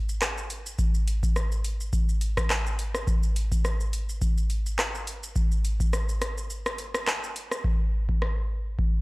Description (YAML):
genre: dancehall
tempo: 105 BPM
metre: 4/4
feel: swing 56% on 16ths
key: none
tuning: none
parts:
  - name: booming analog drum machine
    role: drums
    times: 0.1-8.9 s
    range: handclaps, hi-hat, kick drum, rim click, shaker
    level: -25 LUFS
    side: equal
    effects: none
room: little or no reverb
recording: dry, gritty hardware recording, cassette tape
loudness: -25 LUFS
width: side -23 dB against mid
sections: 0.0-7.6 A section; 7.6-9.0 B section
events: break 6.5-7.6; hi-hats muted 7.6-9.0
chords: none